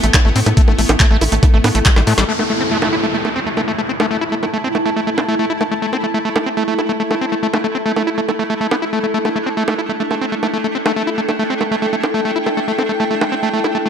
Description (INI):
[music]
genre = psychedelic trance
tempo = 140 BPM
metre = 4/4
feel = straight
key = unclear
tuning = A4 = 439 Hz
[part]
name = pulsing gated texture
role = sustained chords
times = 0.0-13.9 s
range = A3 to E4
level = -24 LUFS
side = right 1 dB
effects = chorus, built-in reverb, sidechain pumping
[part]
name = screaming distorted acid line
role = riff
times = 0.0-13.9 s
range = G3 to E4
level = -19 LUFS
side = moving between left 5 dB and right 4 dB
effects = distortion, chorus, auto-pan, sidechain pumping, dub echo
[part]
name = tight sequencer bass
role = bass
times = 0.0-2.2 s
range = A1 to A2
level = -16 LUFS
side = equal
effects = none
[part]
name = drum and bass drum kit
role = drums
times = 0.0-13.7 s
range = bongos, handclaps, hi-hat, snare drum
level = -20 LUFS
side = right 2 dB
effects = overdrive, studio reverb
[part]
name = granular cloud pad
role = texture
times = 0.0-13.9 s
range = E4 to A5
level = -23 LUFS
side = left 1 dB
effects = built-in reverb, sidechain pumping
[part]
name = electronic kick drum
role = drums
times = 0.1-1.9 s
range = none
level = -12 LUFS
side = equal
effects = overdrive, studio reverb
[part]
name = downlifter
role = sound effects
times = 2.3-5.7 s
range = none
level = -24 LUFS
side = equal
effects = none
[sound]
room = moderate digital room reverb, RT60 1.1 s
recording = none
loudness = -14 LUFS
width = side -7 dB against mid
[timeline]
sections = 0.0-2.3 A section; 2.3-13.9 B section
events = drop 0.0-2.3; drum fill 1.9-2.3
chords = 0.0 A5